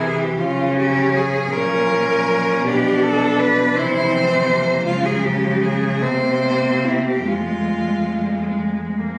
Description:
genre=classical, lyrical piece for cello ensemble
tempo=46-56 BPM (dotted quarters)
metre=6/8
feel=rubato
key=F minor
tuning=A4 = 437 Hz
part: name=rich cello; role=second line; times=0.0-8.6 s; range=E4 to C5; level=-22 LUFS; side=equal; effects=none
part: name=clear cello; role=accompaniment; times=0.0-9.2 s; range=E3 to Bb3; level=-27 LUFS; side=equal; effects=none
part: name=rich cello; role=bass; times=0.0-9.2 s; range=F2 to Db3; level=-25 LUFS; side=equal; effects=none
part: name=rich cello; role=melody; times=0.4-9.2 s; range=Ab3 to E4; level=-25 LUFS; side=equal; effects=none
room=moderate recital hall reverb, RT60 1.4 s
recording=recorded on a phone in the room, studio reverb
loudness=-19 LUFS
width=mono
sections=0.0-9.2 A section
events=none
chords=0.4 Db; 1.5 Bbm; 2.7 Bm7b5; 3.8 C; 4.8 Db; 6.0 C7(no3); 7.3 Fm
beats=| 0.37 1.53 | 2.66 3.76 | 4.85 6.01 | 7.28 8.55

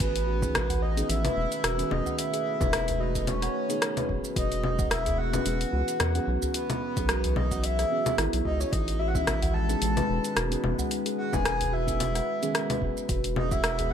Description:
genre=organic downtempo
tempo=110 BPM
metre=4/4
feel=swing 55% on 16ths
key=unclear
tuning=A4 = 439 Hz
part: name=breathy flute-like synth lead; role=melody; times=0.0-13.9 s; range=B4 to A5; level=-31 LUFS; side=equal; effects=lush chorus, digital delay
part: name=warbly tape-like pad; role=sustained chords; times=0.0-13.9 s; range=D#3 to B4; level=-37 LUFS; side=left 1 dB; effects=chorus, built-in reverb, phaser, sidechain pumping
part: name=round analog bass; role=bass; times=0.0-13.9 s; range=E1 to E2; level=-29 LUFS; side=equal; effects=sidechain pumping
part: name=deep house drum kit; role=drums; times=0.0-13.9 s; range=congas, hi-hat, rim click, shaker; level=-30 LUFS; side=left 1 dB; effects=overdrive
part: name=electronic kick drum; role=drums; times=0.0-13.6 s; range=none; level=-32 LUFS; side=equal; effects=overdrive
part: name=steel tongue drum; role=arpeggios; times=0.3-13.9 s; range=E4 to F#5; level=-34 LUFS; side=equal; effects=digital delay
part: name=muted felt-like synth keys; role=accompaniment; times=0.4-13.6 s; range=D#3 to B4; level=-36 LUFS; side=right 3 dB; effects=chorus, sidechain pumping, digital delay
part: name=udu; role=percussion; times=0.4-13.9 s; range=none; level=-35 LUFS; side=equal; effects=none
room=moderate plate reverb, RT60 2.3 s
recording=bright 1980s-style digital production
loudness=-25 LUFS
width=side -8 dB against mid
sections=0.0-13.9 A section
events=none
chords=0.0 Amaj9#11; 4.4 E69; 8.7 Amaj9#11; 13.1 E69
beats=| 0.00 0.55 1.09 1.64 | 2.18 2.73 3.27 3.82 | 4.37 4.91 5.46 6.00 | 6.55 7.09 7.64 8.18 | 8.73 9.27 9.82 10.37 | 10.91 11.46 12.00 12.55 | 13.09 13.64

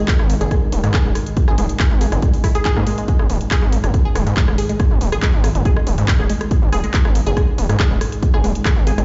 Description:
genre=driving peak-time techno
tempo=140 BPM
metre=4/4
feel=straight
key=unclear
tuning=A4 = 442 Hz
part: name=analog drone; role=drone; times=0.0-9.0 s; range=G#2 to D#3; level=-28 LUFS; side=equal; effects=chorus, sidechain pumping
part: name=electronic kick drum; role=drums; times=0.1-8.7 s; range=none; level=-19 LUFS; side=equal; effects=none
part: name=techno drum kit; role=drums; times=0.1-9.0 s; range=handclaps, hi-hat, rim click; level=-28 LUFS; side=equal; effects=none
part: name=gritty driven synth bass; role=bass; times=0.2-9.0 s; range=D#1 to G#2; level=-21 LUFS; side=equal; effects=sidechain pumping
part: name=tight sequenced synth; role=riff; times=0.4-9.0 s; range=G#3 to G#4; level=-28 LUFS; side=equal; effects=chorus, tube saturation, vintage 12-bit sampler grit, sidechain pumping, tape echo
room=light reverb, digital ambience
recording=played on a big sound system in a bare room, large studio reverb, nothing above 7.7 kHz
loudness=-17 LUFS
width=mono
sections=0.0-9.0 A section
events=none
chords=0.0 G#5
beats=0.08 0.51 0.94 | 1.37 1.80 2.23 2.65 | 3.08 3.51 3.94 4.37 | 4.80 5.22 5.65 6.08 | 6.51 6.94 7.37 7.80 | 8.22 8.65

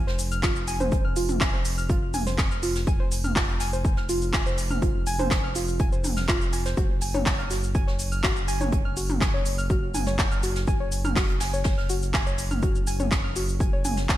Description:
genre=melodic techno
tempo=123 BPM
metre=4/4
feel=straight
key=F phrygian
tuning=A4 = 440 Hz
part: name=soft round pluck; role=arpeggios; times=0.0-14.2 s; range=F4 to F6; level=-30 LUFS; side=equal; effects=chorus, sidechain pumping, digital delay
part: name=round analog bass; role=bass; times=0.0-14.2 s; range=F1 to Gb1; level=-29 LUFS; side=equal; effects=sidechain pumping
part: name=soft brush drum kit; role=drums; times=0.1-14.2 s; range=hi-hat, snare drum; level=-38 LUFS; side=right 2 dB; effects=sidechain pumping on hats, high-pass filter on hats, high-pass filter on snare, high-pass filter on room, gated reverb
part: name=techno drum kit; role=drums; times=0.2-14.2 s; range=handclaps, hi-hat, shaker, toms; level=-29 LUFS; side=equal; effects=gated reverb
part: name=electronic kick drum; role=drums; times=0.4-14.2 s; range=none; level=-25 LUFS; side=equal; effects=none
room=light reverb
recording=bright 1980s-style digital production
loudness=-22 LUFS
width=side -14 dB against mid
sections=0.0-14.2 A section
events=none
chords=0.0 Fm; 6.8 Gbsus2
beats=0.43 | 0.92 1.41 1.90 2.38 | 2.87 3.36 3.85 4.33 | 4.82 5.31 5.80 6.29 | 6.77 7.26 7.75 8.24 | 8.72 9.21 9.70 10.19 | 10.68 11.16 11.65 12.14 | 12.63 13.12 13.60 14.09

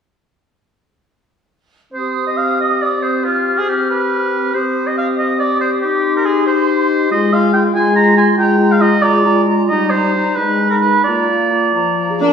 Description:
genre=classical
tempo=85-95 BPM (dotted quarters)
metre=6/8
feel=rubato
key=C minor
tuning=A4 = 436 Hz
part: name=clear clarinet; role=second line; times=1.9-12.3 s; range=Eb4 to Bb4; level=-20 LUFS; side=left 2 dB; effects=none
part: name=mellow small flute group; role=second line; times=1.9-12.3 s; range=D5 to F6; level=-22 LUFS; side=right 4 dB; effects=none
part: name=warm oboe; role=second line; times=1.9-12.2 s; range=F4 to Bb5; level=-16 LUFS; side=right 2 dB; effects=none
part: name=mellow French horn section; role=sustained chords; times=1.9-12.3 s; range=F3 to Eb4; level=-17 LUFS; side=left 2 dB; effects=none
part: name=warm symphonic violin section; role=second line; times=12.2-12.3 s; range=D5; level=-18 LUFS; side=left 12 dB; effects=none
part: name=rich symphonic viola section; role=accompaniment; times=12.2-12.3 s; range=D4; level=-13 LUFS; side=right 2 dB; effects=none
room=wet recital hall reverb, RT60 1.6 s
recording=heard from further back in the room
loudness=-12 LUFS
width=side -7 dB against mid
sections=1.9-12.3 A section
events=none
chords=1.9 Cm; 5.8 Cm/Eb; 7.1 Fm/Ab; 9.7 Eb/G; 10.4 Abm; 11.1 Bb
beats=| 1.94 2.61 | 3.26 3.90 | 4.55 5.19 | 5.83 6.47 | 7.11 7.75 | 8.39 9.03 | 9.69 10.37 | 11.05 11.74

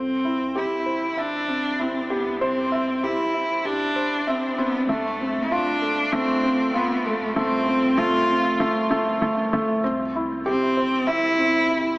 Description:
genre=piano and strings electronica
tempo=97 BPM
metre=4/4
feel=straight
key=C major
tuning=A4 = 440 Hz
part: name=warm cello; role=melody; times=0.0-12.0 s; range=A3 to F4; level=-22 LUFS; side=equal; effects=none
part: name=felt-muted upright piano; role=riff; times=0.0-12.0 s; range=A3 to E5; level=-24 LUFS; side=equal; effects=digital delay
part: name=warm sub bass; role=bass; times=0.0-12.0 s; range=G1 to C2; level=-47 LUFS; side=equal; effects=none
room=wet huge ambient reverb, RT60 5.3 s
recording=small speaker sound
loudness=-20 LUFS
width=side -21 dB against mid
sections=0.0-9.8 A section; 9.8-12.0 B section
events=build-up 0.0-9.8; drop 9.8-12.0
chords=0.0 C; 4.9 F; 9.8 C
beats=0.56 1.18 1.80 | 2.42 3.03 3.65 4.27 | 4.89 5.51 6.13 6.75 | 7.36 7.98 8.60 9.22 | 9.84 10.46 11.07 11.69

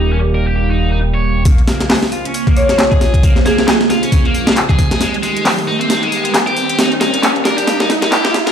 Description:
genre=breakbeat, breaks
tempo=135 BPM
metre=4/4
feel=swing 57% on 16ths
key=Bb dorian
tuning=A4 = 440 Hz
part: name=phased analog pad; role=sustained chords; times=0.0-8.5 s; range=Db3 to C5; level=-20 LUFS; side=right 3 dB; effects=phaser, chorus, sidechain pumping
part: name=scooped high-gain guitar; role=riff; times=0.0-8.5 s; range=G3 to Db5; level=-20 LUFS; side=left 1 dB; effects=distortion, tube saturation, vintage 12-bit sampler grit, low-pass filter, ping-pong delay
part: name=dark detuned saw bass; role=bass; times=0.0-1.4 s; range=Eb1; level=-15 LUFS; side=equal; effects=tube saturation
part: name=breakbeat sampler-style drum kit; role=drums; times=1.5-8.5 s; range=hi-hat, kick drum, snare drum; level=-14 LUFS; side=equal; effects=none
part: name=house drum kit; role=drums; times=1.5-8.5 s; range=handclaps, hi-hat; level=-19 LUFS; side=equal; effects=low-pass filter on hats, low-pass filter on snare
part: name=riser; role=sound effects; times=4.3-8.5 s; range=none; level=-21 LUFS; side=right 1 dB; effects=none
part: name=marimba with hard mallets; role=melody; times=2.6-3.6 s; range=Ab4 to Db5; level=-18 LUFS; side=left 2 dB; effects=old record sound, vintage 12-bit sampler grit, ping-pong delay
room=moderate studio reverb, RT60 0.6 s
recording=played on a big sound system in a bare room, large studio reverb, high-pass filter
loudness=-11 LUFS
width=side -8 dB against mid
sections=0.0-1.5 A section; 1.5-8.5 B section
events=build-up 1.5-8.5; filter sweep on distorted electric guitar 1.5-8.5; filter sweep on analog synth pad 1.5-8.5; filter sweep 1.5-8.5; riser 4.3-8.5; drum fill 5.0-8.5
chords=0.0 Eb; 1.5 Bbmadd9; 5.0 Abmaj7; 6.8 Eb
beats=0.12 0.57 1.01 | 1.46 1.90 2.35 2.79 | 3.23 3.68 4.12 4.57 | 5.01 5.46 5.90 6.35 | 6.79 7.24 7.68 8.12

